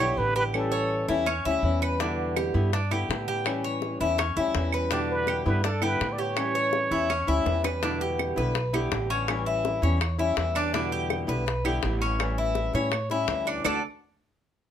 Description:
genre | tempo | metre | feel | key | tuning
latin, Cuban son and guajira | 165 BPM | 4/4 | straight | unclear | A4 = 440 Hz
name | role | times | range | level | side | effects
trumpet with plunger mute | melody | 0.0-1.2, 4.9-7.5 s | G4 to D5 | -28 LUFS | right 2 dB | none
flamenco guitar | accompaniment | 0.0-13.8 s | B2 to F#4 | -30 LUFS | left 2 dB | none
Cuban tres | arpeggios | 0.0-13.8 s | C#4 to D5 | -28 LUFS | left 1 dB | none
upright bass | bass | 0.0-13.8 s | A1 to A2 | -30 LUFS | right 1 dB | none
claves | percussion | 0.5-13.7 s | none | -33 LUFS | right 10 dB | none
bongos | percussion | 2.0-13.7 s | none | -33 LUFS | left 8 dB | none
room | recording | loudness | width
light reverb | close, detailed microphones | -24 LUFS | side -9 dB against mid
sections
0.0-7.8 A section; 7.8-13.6 B section; 13.6-14.7 C section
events
drum fill 7.1-7.8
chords
0.0 Em7; 0.5 A7; 2.0 Em7; 3.5 A7; 4.9 Em7; 6.4 A7; 7.8 Em7; 9.3 A7; 10.7 Em7; 12.2 A7; 13.6 D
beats
0.17 | 0.54 0.90 1.27 1.63 | 2.00 2.36 2.73 3.09 | 3.46 3.82 4.19 4.55 | 4.92 5.28 5.64 6.01 | 6.37 6.74 7.10 7.46 | 7.83 8.19 8.56 8.92 | 9.29 9.65 10.01 10.38 | 10.74 11.10 11.47 11.83 | 12.19 12.56 12.92 13.28 | 13.65

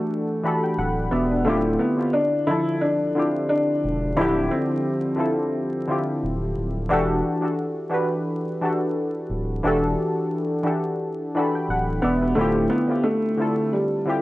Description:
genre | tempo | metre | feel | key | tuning
lo-fi hip hop | 88 BPM | 4/4 | swing 56% on 16ths | E phrygian | A4 = 441 Hz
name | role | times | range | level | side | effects
felt-muted upright piano | melody | 0.0-6.5, 12.0-14.2 s | G3 to E4 | -23 LUFS | equal | low-pass filter
warm analog keys | accompaniment | 0.0-14.2 s | D3 to B5 | -23 LUFS | left 1 dB | chorus, cassette tape, low-pass filter
saturated sub bass | bass | 0.8-12.7 s | D1 to E1 | -28 LUFS | equal | none
room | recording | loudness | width
moderate studio ambience, RT60 0.5 s | vinyl crackle, nothing above 10.6 kHz | -20 LUFS | side -17 dB against mid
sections
0.0-14.2 A section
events
none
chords
0.0 Em11; 1.4 Dm11; 6.9 Em11; 12.4 Dm11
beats
0.09 0.77 | 1.45 2.13 2.81 3.49 | 4.18 4.86 5.54 6.22 | 6.90 7.58 8.27 8.95 | 9.63 10.31 10.99 11.68 | 12.36 13.04 13.72

